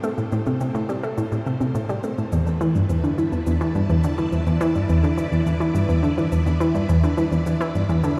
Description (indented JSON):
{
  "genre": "ambient, sequencer-driven space music",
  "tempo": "105 BPM",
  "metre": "4/4",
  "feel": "straight",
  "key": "unclear",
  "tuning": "A4 = 440 Hz",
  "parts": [
    { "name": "string machine, full ensemble", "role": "sustained chords", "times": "0.0-8.2 s", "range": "A3 to B5", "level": "-34 LUFS", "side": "equal", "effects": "phaser, ensemble chorus" },
    { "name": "analog pluck", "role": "riff", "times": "0.0-8.1 s", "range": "E2 to A3", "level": "-22 LUFS", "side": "equal", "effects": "chorus, delay" },
    { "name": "cabasa and woodblock", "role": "percussion", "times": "0.0-8.2 s", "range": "none", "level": "-50 LUFS", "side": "equal", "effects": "delay" }
  ],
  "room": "moderate shimmer reverb, RT60 8.2 s",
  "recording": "played on a big sound system in a bare room, stone room reverb",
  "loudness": "-22 LUFS",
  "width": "mono",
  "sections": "0.0-8.2 A section",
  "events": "fade-in on string machine 0.0-8.2",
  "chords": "0.0 Am7; 2.3 E7sus4"
}